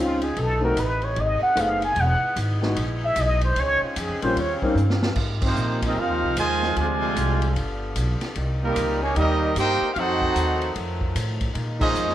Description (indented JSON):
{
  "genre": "jazz, big band swing",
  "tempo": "150 BPM",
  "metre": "4/4",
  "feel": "swing 64% on 8ths",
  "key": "Ab major",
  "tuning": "A4 = 440 Hz",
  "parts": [
    { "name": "trumpet with plunger mute", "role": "melody", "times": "0.0-4.5 s", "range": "F4 to Ab5", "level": "-23 LUFS", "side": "equal", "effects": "plate reverb" },
    { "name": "warm grand piano", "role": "accompaniment", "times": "0.0-4.8 s", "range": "G3 to Ab4", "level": "-25 LUFS", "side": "left 1 dB", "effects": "none" },
    { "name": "bright saxophone section", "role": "sustained chords", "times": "0.0-12.1 s", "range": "C3 to F4", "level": "-34 LUFS", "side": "left 1 dB", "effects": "none" },
    { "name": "upright bass", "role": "bass", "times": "0.0-12.1 s", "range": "E1 to Bb2", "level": "-25 LUFS", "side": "equal", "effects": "none" },
    { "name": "swinging big-band drum kit", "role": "drums", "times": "0.2-12.1 s", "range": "crash cymbal, hi-hat, kick drum, ride cymbal, snare drum", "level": "-31 LUFS", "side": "equal", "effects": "none" },
    { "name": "clear trombone section", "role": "second line", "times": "5.4-12.1 s", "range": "C3 to G4", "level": "-26 LUFS", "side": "right 3 dB", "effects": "none" },
    { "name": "bright trumpet section", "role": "melody", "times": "5.5-12.1 s", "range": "G3 to Ab5", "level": "-24 LUFS", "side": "equal", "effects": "plate reverb" }
  ],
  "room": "moderate large studio reverb, RT60 0.9 s",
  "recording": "worn, warbling old tape, cassette tape, warbly pitch drift",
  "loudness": "-20 LUFS",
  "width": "side -12 dB against mid",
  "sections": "0.0-5.2 A section; 5.2-12.1 B section",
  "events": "muted trumpet solo 0.0-5.2; drum fill 4.8-5.2; band accent 5.4, 11.7",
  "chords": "0.4 B7b9; 2.0 Emaj7; 3.6 Bbm11; 4.4 Eb13; 5.2 Ab69; 6.8 Dm7b5; 7.6 G7; 8.4 Cm7; 10.0 F7b9; 11.5 Bbm11",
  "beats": "| 0.36 0.76 1.16 1.56 | 1.97 2.37 2.77 3.17 | 3.56 3.96 4.37 4.76 | 5.16 5.56 5.96 6.36 | 6.76 7.16 7.56 7.96 | 8.36 8.76 9.15 9.55 | 9.95 10.35 10.75 11.15 | 11.55 11.95"
}